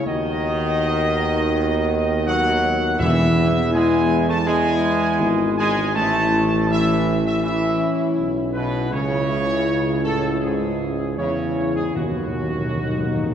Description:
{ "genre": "classical", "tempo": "81 BPM", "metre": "4/4", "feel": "straight", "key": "E major", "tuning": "A4 = 440 Hz", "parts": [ { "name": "dark trumpet section", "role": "melody", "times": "0.0-13.3 s", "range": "F#4 to A5", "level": "-24 LUFS", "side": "equal", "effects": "none" }, { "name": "clear trombone section", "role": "sustained chords", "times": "0.0-13.3 s", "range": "F#2 to A3", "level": "-26 LUFS", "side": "right 3 dB", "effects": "none" }, { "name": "mellow French horn section", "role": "sustained chords", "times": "0.0-13.3 s", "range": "B3 to F#4", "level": "-24 LUFS", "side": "left 3 dB", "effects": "none" }, { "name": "warm tuba", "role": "bass", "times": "0.1-13.3 s", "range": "G#1 to E2", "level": "-22 LUFS", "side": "right 1 dB", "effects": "none" }, { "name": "timpani", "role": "percussion", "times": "3.0-4.1, 12.0-13.3 s", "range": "E2 to B2", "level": "-26 LUFS", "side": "equal", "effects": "none" } ], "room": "wet church reverb, RT60 3.1 s", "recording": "dark, warm production", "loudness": "-18 LUFS", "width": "side -8 dB against mid", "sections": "0.0-13.3 A section", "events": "timpani fill 12.0-13.3", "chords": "0.1 B/D#; 3.0 E; 5.9 A; 8.9 C#m; 12.0 B/D#" }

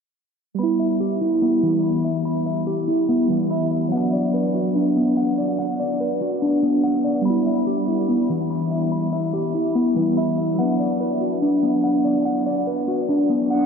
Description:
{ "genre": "hip hop", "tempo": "144 BPM", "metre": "4/4", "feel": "half-time", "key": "E minor", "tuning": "A4 = 437 Hz", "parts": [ { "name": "warbly lo-fi synth keys", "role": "accompaniment", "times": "0.5-13.7 s", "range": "F#3 to E5", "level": "-23 LUFS", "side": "right 2 dB", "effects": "chorus, low-pass filter" }, { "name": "mellow electric guitar", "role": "arpeggios", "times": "0.6-13.7 s", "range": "E3 to B5", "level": "-20 LUFS", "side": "left 1 dB", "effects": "spring reverb, low-pass filter, tape echo" } ], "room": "wet huge ambient reverb, RT60 7.7 s", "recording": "dreamy mix soaked in reverb, low-pass filter", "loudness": "-18 LUFS", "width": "side -6 dB against mid", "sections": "0.6-13.7 A section", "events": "filter sweep 0.6-13.7; synth keys fill 3.3-3.9", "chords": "0.6 Em; 3.9 Bm; 7.3 Em; 10.6 Bm" }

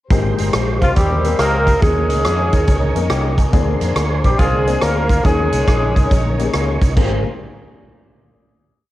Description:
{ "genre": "uptempo gospel", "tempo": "140 BPM", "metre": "4/4", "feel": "swing 66% on 8ths", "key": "Ab major", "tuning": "A4 = 442 Hz", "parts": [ { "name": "warm grand piano", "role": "accompaniment", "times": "0.1-7.2 s", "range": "Ab1 to Ab5", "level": "-23 LUFS", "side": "left 7 dB", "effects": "cassette tape" }, { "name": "tonewheel organ", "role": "sustained chords", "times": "0.1-7.2 s", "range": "Bb3 to Db6", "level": "-28 LUFS", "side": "right 8 dB", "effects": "slow rotary speaker, chorus vibrato, cassette tape" }, { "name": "warm studio string section", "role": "sustained chords", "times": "0.1-7.2 s", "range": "D4 to Db5", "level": "-28 LUFS", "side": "left 1 dB", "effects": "cassette tape" }, { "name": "fingered electric bass", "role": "bass", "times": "0.1-7.2 s", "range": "G1 to F2", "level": "-20 LUFS", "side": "equal", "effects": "none" }, { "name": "swinging big-band drum kit", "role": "drums", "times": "0.1-7.1 s", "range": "crash cymbal, hi-hat, kick drum, rim click", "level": "-17 LUFS", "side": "equal", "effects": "cassette tape" }, { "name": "mellow horn section", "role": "melody", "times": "0.8-6.5 s", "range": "Bb3 to Bb4", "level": "-20 LUFS", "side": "left 1 dB", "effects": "cassette tape" }, { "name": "warm tenor saxophone", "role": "melody", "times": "0.8-6.5 s", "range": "F3 to Bb3", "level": "-24 LUFS", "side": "right 3 dB", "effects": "cassette tape" } ], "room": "studio ambience", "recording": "home recording on cassette", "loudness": "-14 LUFS", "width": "side -15 dB against mid", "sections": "0.1-7.0 breakdown; 7.0-8.7 final chord", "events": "grand piano fill 2.7-3.5", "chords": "0.1 Abmaj9; 1.8 Eb7sus4; 3.5 Bb9; 5.2 Eb7sus4; 7.0 Abmaj9" }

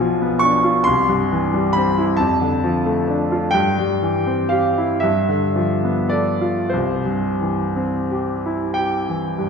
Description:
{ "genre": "classical, romantic nocturne for solo piano", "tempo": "28-46 BPM (dotted quarters)", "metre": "6/8", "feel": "rubato", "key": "C major", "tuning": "A4 = 437 Hz", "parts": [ { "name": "clear concert grand piano", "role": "solo", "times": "0.0-9.5 s", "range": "B1 to Db6", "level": "-17 LUFS", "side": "equal", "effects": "none" } ], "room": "wet concert hall reverb, RT60 1.9 s", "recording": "none", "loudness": "-17 LUFS", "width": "side -6 dB against mid", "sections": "0.0-9.5 A section", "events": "none", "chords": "0.0 Bdim7; 0.9 C; 2.2 Dm/F; 3.6 C/G; 5.0 G9; 6.7 C" }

